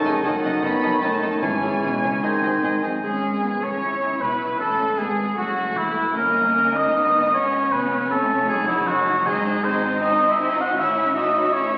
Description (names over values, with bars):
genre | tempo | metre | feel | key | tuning
classical, dramatic, fast romantic movement for symphony orchestra | 155 BPM | 4/4 | straight | unclear | A4 = 436 Hz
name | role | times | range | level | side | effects
rich symphonic violin section | melody | 0.0-11.8 s | E4 to E6 | -35 LUFS | equal | none
concert flute | second line | 0.0-2.8 s | G#6 to A6 | -32 LUFS | equal | none
warm clarinet | second line | 0.0-2.8 s | C#4 to D#4 | -30 LUFS | equal | none
warm oboe | second line | 0.0-11.8 s | E4 to F#5 | -24 LUFS | equal | none
warm bassoon | accompaniment | 0.0-2.8 s | D#3 to E3 | -30 LUFS | equal | none
dark French horn section | sustained chords | 0.0-2.6 s | F#3 to B3 | -32 LUFS | equal | none
warm symphonic cello section | bass | 0.0-11.8 s | F#2 to F#4 | -32 LUFS | equal | none
rich symphonic violin section | second line | 0.1-11.8 s | B3 to E5 | -32 LUFS | equal | none
warm symphonic viola section | accompaniment | 0.1-11.8 s | A3 to F#4 | -33 LUFS | equal | none
clear symphonic double bass section | bass | 0.1-11.8 s | E1 to C#2 | -36 LUFS | equal | none
timpani | percussion | 1.4-2.0, 9.3-9.8 s | G#2 | -40 LUFS | equal | none
room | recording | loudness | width
wet concert hall reverb, RT60 2.0 s | very old 78 rpm record, vinyl crackle | -21 LUFS | mono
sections
0.0-3.0 A section; 3.0-11.8 A section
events
none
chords
0.0 D#m7b5/F#; 1.4 C#m/G#; 2.2 G#; 3.0 E/G#; 4.6 Amaj7; 6.2 D#7/G; 7.0 G#m; 7.7 C#7/E#; 8.5 F#m; 9.3 G#; 10.8 A